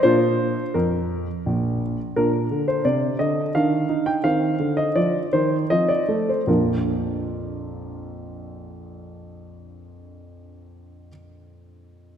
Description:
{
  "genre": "classical-period piano sonatina",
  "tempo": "76-87 BPM",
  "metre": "3/4",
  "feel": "rubato",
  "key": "Bb major",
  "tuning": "A4 = 440 Hz",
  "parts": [
    { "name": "clear grand piano", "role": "solo", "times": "0.0-12.2 s", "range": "Bb1 to G5", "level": "-20 LUFS", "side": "equal", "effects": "none" }
  ],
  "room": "wet scoring stage reverb, RT60 1.9 s",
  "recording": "none",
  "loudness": "-20 LUFS",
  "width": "side -8 dB against mid",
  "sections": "0.0-2.2 A section; 2.2-6.5 B section; 6.5-11.1 C section",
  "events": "slowing down 1.1-6.5",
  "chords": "0.0 Bb; 3.6 Ebmaj9; 4.3 Cm; 5.7 F; 6.5 Bb",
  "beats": "| 0.04 0.76 1.46 | 2.17 2.86 3.55 | 4.25 4.97 5.71 | 6.49 7.25 8.02 | 8.79 9.56 10.34"
}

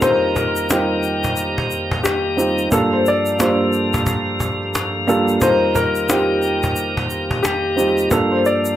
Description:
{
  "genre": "hip hop, boom-bap hip-hop",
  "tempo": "89 BPM",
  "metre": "4/4",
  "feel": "swing 60% on 16ths",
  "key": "unclear",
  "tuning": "A4 = 440 Hz",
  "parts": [
    { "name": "warm upright piano", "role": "melody", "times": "0.0-8.8 s", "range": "G4 to D5", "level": "-21 LUFS", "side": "left 3 dB", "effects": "digital delay" },
    { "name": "dark baby grand piano", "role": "accompaniment", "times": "0.0-8.8 s", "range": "G3 to C5", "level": "-19 LUFS", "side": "right 2 dB", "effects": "cassette tape" },
    { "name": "tonewheel organ", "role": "sustained chords", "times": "0.0-8.8 s", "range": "F2 to G4", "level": "-24 LUFS", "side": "left 1 dB", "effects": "slow rotary speaker" },
    { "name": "cajon", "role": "drums", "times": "0.0-8.5 s", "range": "none", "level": "-24 LUFS", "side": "equal", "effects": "none" },
    { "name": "egg shaker", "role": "percussion", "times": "0.0-8.8 s", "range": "none", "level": "-30 LUFS", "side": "left 6 dB", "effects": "none" }
  ],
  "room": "moderate studio ambience, RT60 0.5 s",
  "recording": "none",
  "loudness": "-16 LUFS",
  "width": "side -12 dB against mid",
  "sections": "0.0-8.8 A section",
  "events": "none",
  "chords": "0.0 F9sus4; 2.7 Gm7; 5.4 F9sus4; 8.1 Gm7",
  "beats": "| 0.02 0.70 1.37 2.04 | 2.72 3.39 4.07 4.74 | 5.42 6.09 6.76 7.44 | 8.11"
}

